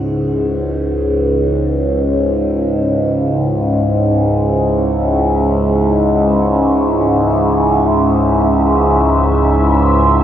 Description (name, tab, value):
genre	dark ambient drone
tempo	free time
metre	none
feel	none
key	C# minor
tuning	A4 = 440 Hz
part	deep dark ambient pad	sustained chords	0.0-10.2 s	C#4 to F#5	-18 LUFS	equal	chorus, built-in reverb, shimmer reverb
part	overtone-sweeping drone	drone	0.0-10.2 s	C#2 to G#2	-13 LUFS	equal	chorus, built-in reverb, phaser
room	wet cathedral reverb, RT60 5.8 s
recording	cassette tape, nothing above 10.7 kHz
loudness	-12 LUFS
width	side -10 dB against mid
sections	0.0-10.2 A section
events	fade-in on ambient pad 0.0-10.2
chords	0.0 C#m